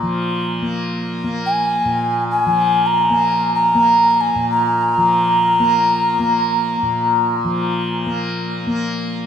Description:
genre	world meditative, free-time meditation music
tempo	free time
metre	none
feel	none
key	unclear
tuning	A4 = 440 Hz
part	tanpura	drone	0.0-9.3 s	Bb2 to Bb3	-21 LUFS	equal	none
part	mellow alto ocarina	melody	1.5-7.4 s	Ab5 to Bb5	-16 LUFS	equal	diffuse ambient delay
room	wet huge ambient reverb, RT60 6.2 s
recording	dark, warm production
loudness	-15 LUFS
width	side -8 dB against mid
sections	0.0-9.3 A section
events	none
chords	none

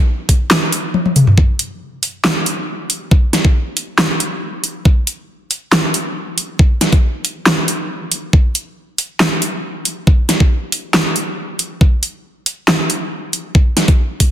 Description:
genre	dubstep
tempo	138 BPM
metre	4/4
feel	half-time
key	none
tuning	none
part	dubstep drum kit	drums	0.3-14.3 s	handclaps, hi-hat, snare drum, toms	-15 LUFS	equal	overdrive
part	electronic kick drum	drums	0.3-14.3 s	none	-11 LUFS	equal	overdrive
room	light reverb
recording	dense, heavily limited modern master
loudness	-13 LUFS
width	side -11 dB against mid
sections	0.0-14.3 A section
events	kick drops out 0.5-1.4; drum fill 0.9-1.4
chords	none

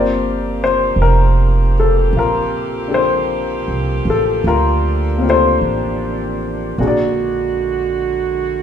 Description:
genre	jazz ballad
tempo	52 BPM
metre	4/4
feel	swing 66% on 8ths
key	G minor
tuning	A4 = 440 Hz
part	warm baby grand piano	accompaniment	0.0-8.6 s	Bb3 to D5	-17 LUFS	left 4 dB	none
part	mellow saxophone section	sustained chords	0.0-8.6 s	D3 to G4	-21 LUFS	right 4 dB	none
part	upright bass	bass	0.0-8.6 s	F1 to D2	-18 LUFS	right 1 dB	none
room	moderate large studio reverb, RT60 1.2 s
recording	minimal, uncompressed stereo recording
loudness	-14 LUFS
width	side -9 dB against mid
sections	0.0-8.6 A section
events	none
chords	0.0 Gm11; 6.8 Bbaug7

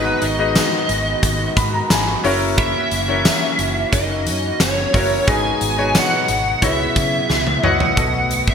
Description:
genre	1980s-style pop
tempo	89 BPM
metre	4/4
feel	straight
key	C# dorian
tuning	A4 = 442 Hz
part	lead guitar through a small cranked amp	melody	0.0-8.5 s	B4 to G#5	-20 LUFS	equal	overdrive, ensemble chorus
part	direct-recorded clean electric guitar	second line	0.0-7.6 s	B3 to G#4	-30 LUFS	right 4 dB	digital delay
part	clear concert grand piano	accompaniment	0.0-8.5 s	G#2 to B5	-22 LUFS	left 3 dB	lush chorus
part	chorused pulse-width pad	sustained chords	0.0-8.5 s	B2 to F#4	-27 LUFS	equal	none
part	vintage muted fingered electric bass	bass	0.0-8.5 s	F#1 to C#3	-25 LUFS	equal	none
part	big rock drum kit	drums	0.2-8.5 s	hi-hat, kick drum, snare drum, tambourine, toms	-20 LUFS	equal	gated reverb
part	cowbell	percussion	0.6-7.5 s	none	-36 LUFS	right 7 dB	none
room	moderate plate reverb, RT60 2.1 s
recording	bright 1980s-style digital production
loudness	-15 LUFS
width	side -7 dB against mid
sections	0.0-8.0 A section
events	grand piano fill 1.2-2.6; drum fill 7.3-8.0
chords	0.0 G#m7; 2.2 F#7; 5.3 G#m7; 6.6 C#m11; 8.0 B7

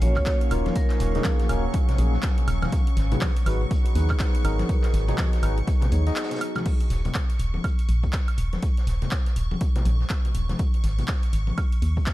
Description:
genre	deep house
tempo	122 BPM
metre	4/4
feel	swing 60% on 16ths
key	Eb minor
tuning	A4 = 440 Hz
part	vibraphone with hard mallets	melody	0.0-1.2 s	Bb4 to Db5	-32 LUFS	right 3 dB	tape echo
part	deep dark ambient pad	sustained chords	0.0-6.6 s	Gb3 to Bb5	-35 LUFS	equal	chorus, built-in reverb, sidechain pumping
part	barky tine electric piano	stabs	0.0-6.6 s	Bb3 to Eb5	-31 LUFS	left 1 dB	wide subtle chorus, sidechain pumping, tape echo
part	organ-like FM bass	bass	0.0-12.0 s	Eb1 to Eb2	-23 LUFS	equal	sidechain pumping
part	punchy analog drum machine	drums	0.0-12.1 s	crash cymbal, handclaps, hi-hat, woodblock	-34 LUFS	right 1 dB	overdrive
part	vintage drum kit	drums	0.0-12.1 s	hi-hat, snare drum	-43 LUFS	equal	sidechain pumping on hats, high-pass filter on hats, high-pass filter on snare, high-pass filter on room
part	congas	percussion	0.0-11.6 s	none	-34 LUFS	left 2 dB	tape echo
part	string machine, violins	texture	0.0-12.1 s	Db6	-41 LUFS	equal	ensemble chorus, sidechain pumping
part	electronic kick drum	drums	0.2-12.1 s	none	-24 LUFS	equal	overdrive
room	small room ambience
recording	echo-heavy mix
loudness	-21 LUFS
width	side -16 dB against mid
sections	0.0-6.7 A section; 6.7-12.1 B section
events	drop 0.0-6.7; break 6.2-6.7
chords	0.0 Ebm7; 2.7 Abm7; 6.7 Eb5; 10.6 Ab5

